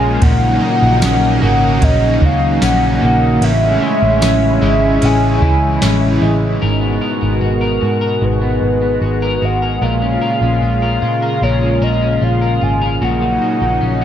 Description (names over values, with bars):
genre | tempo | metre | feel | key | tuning
dream pop | 75 BPM | 4/4 | straight | G# minor | A4 = 440 Hz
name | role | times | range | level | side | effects
warbly nostalgic lead | melody | 0.0-14.0 s | A#4 to G#5 | -18 LUFS | equal | chorus, ping-pong delay
overdriven semi-hollow guitar | accompaniment | 0.0-7.1 s | A2 to A#4 | -23 LUFS | right 4 dB | tremolo, lush chorus
lush unison pad | sustained chords | 0.0-14.0 s | B2 to F#4 | -19 LUFS | equal | chorus
electric guitar at the edge of break-up | arpeggios | 0.0-14.0 s | G#2 to A#4 | -19 LUFS | left 3 dB | analog chorus, ping-pong delay
vintage muted picked electric bass | bass | 0.0-14.0 s | G#1 to A#2 | -17 LUFS | equal | none
soft vintage rhythm box | drums | 0.2-6.0 s | kick drum, ride cymbal, snare drum, tambourine | -17 LUFS | equal | none
room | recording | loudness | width
light reverb | dark, warm production | -12 LUFS | side -10 dB against mid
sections
0.0-6.6 A section; 6.6-14.0 B section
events
none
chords
0.2 F#6; 3.4 Amaj7; 6.6 G#m9; 9.8 A#m7; 13.0 F#6/A#